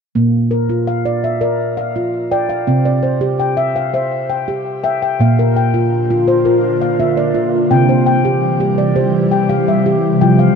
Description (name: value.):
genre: world meditative.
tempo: 167 BPM (eighths).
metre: 7/8.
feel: straight.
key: Bb lydian.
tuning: A4 = 441 Hz.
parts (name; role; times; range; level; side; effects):
handpan; arpeggios; 0.2-10.6 s; Bb2 to G5; -14 LUFS; equal; diffuse ambient delay, shimmer reverb.
ethereal airy pad; sustained chords; 5.9-10.6 s; C3 to F4; -15 LUFS; left 1 dB; ensemble chorus, built-in reverb, phaser.
room: wet booth ambience, RT60 0.1 s.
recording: dark, warm production.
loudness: -13 LUFS.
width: side -6 dB against mid.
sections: 0.2-5.2 A section; 5.2-10.6 B section.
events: none.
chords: 0.2 Bb; 2.7 C; 5.2 Bb; 7.7 C.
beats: | 0.15 0.51 0.87 1.23 1.59 1.96 2.31 | 2.67 3.04 3.39 3.75 4.11 4.47 4.83 | 5.19 5.55 5.91 6.27 6.63 6.98 7.34 | 7.70 8.06 8.42 8.78 9.13 9.49 9.85 | 10.21.